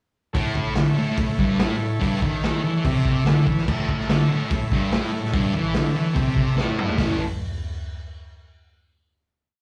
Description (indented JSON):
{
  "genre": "garage rock duo or trio",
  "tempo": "145 BPM",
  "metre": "4/4",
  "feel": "straight",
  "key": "A major",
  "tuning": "A4 = 437 Hz",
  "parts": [
    { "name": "overdriven combo organ", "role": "sustained chords", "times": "0.3-7.2 s", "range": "A4 to E5", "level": "-35 LUFS", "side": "equal", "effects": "none" },
    { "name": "thick fuzz guitar", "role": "riff", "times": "0.3-7.2 s", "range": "G2 to A3", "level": "-24 LUFS", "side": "equal", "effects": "distortion, slapback echo" },
    { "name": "raw garage drum kit", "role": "drums", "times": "0.4-7.1 s", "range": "crash cymbal, hi-hat, kick drum, snare drum, toms", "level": "-27 LUFS", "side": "equal", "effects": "none" }
  ],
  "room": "moderate club reverb, RT60 0.7 s",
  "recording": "live gig heard through the venue's PA, cassette tape, club reverb",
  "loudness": "-22 LUFS",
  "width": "mono",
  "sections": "0.3-7.0 pre-chorus; 7.0-8.6 final chord",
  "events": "drum fill 6.6-7.0",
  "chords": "0.3 A",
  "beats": "| 0.35 0.77 1.19 1.60 | 2.02 2.44 2.85 3.27 | 3.68 4.09 4.51 4.92 | 5.33 5.75 6.16 6.57 | 6.98"
}